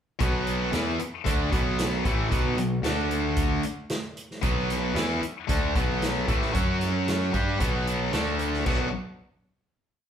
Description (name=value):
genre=classic rock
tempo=113 BPM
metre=4/4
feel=straight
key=B minor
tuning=A4 = 440 Hz
part: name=distorted electric guitar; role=riff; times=0.2-8.9 s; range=A2 to G4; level=-29 LUFS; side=right 7 dB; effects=distortion
part: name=tight distorted guitar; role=riff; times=0.2-8.9 s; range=A2 to G4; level=-29 LUFS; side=left 8 dB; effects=distortion
part: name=overdriven picked electric bass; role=bass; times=0.2-8.9 s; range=A1 to G2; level=-30 LUFS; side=equal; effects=none
part: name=vintage drum kit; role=drums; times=0.2-8.8 s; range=crash cymbal, hi-hat, kick drum, snare drum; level=-29 LUFS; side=equal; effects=none
room=moderate large studio reverb, RT60 0.7 s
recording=band playing live in one room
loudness=-24 LUFS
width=side -9 dB against mid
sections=0.2-8.7 riff; 8.7-10.1 final chord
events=none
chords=0.2 Bm; 2.8 D5; 4.4 Bm; 6.5 F#5; 7.3 Bm; 8.1 D5; 8.7 Bm